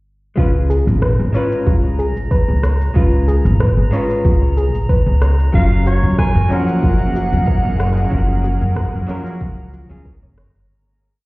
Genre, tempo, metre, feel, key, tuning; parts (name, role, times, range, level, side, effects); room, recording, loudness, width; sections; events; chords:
sunset chillout; 93 BPM; 4/4; swing 53% on 16ths; F# major; A4 = 438 Hz
archtop guitar, miked and amplified; accompaniment; 0.4-10.1 s; E#3 to B4; -22 LUFS; left 1 dB; auto-pan, low-pass filter, ping-pong delay
soft round pluck; arpeggios; 0.4-10.5 s; E#4 to C#5; -25 LUFS; equal; chorus, ping-pong delay
upright bass; bass; 0.4-10.6 s; F#1 to F#2; -16 LUFS; equal
electronic kick drum; drums; 0.4-10.2 s; -17 LUFS; equal
electronic shaker and rim click; drums; 0.4-10.7 s; -29 LUFS; equal
drifting glass-harmonics texture; texture; 0.8-10.7 s; A#5; -34 LUFS; right 1 dB; chorus, built-in reverb
growling soprano saxophone; melody; 5.5-10.1 s; C#5 to G#5; -24 LUFS; right 1 dB; ping-pong delay
shimmering ambient pad; sustained chords; 6.4-10.7 s; A#3 to A#4; -29 LUFS; equal; chorus, built-in reverb
light reverb, digital ambience; heard muffled through a wall, stone room reverb, EQ, faint mains hum; -13 LUFS; side -22 dB against mid
0.4-10.7 groove
fade-out 7.3-10.7
0.4 C#7; 5.5 F#maj7